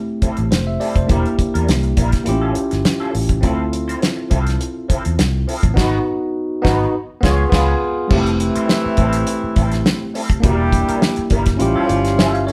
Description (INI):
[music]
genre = lush 1970s-style soul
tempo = 103 BPM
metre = 4/4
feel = swing 54% on 16ths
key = F major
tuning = A4 = 440 Hz
[part]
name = bell-like tine electric piano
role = accompaniment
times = 0.0-12.5 s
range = G3 to F5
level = -23 LUFS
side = equal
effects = none
[part]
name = electric guitar through a small old amp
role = riff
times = 0.2-12.5 s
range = F3 to Db5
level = -29 LUFS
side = equal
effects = wah
[part]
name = vintage muted fingered electric bass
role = bass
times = 0.2-12.5 s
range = E1 to E2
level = -23 LUFS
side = equal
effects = none
[part]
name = damped 70s drum kit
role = drums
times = 0.2-12.5 s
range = crash cymbal, hi-hat, kick drum, snare drum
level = -21 LUFS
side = equal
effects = none
[part]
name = mellow horn section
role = stabs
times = 8.1-12.5 s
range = E3 to G4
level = -24 LUFS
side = equal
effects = none
[sound]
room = moderate studio reverb, RT60 0.7 s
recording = band playing live in one room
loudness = -17 LUFS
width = mono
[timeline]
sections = 0.0-8.1 A section; 8.1-12.5 B section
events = band accent 5.8-8.1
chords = 0.0 Fmaj9; 1.1 Em7b5; 2.3 A7b13; 3.4 Dm9; 5.8 Abm7; 6.9 Db7; 8.1 Fmaj9; 10.4 Em7b5; 11.6 A7b13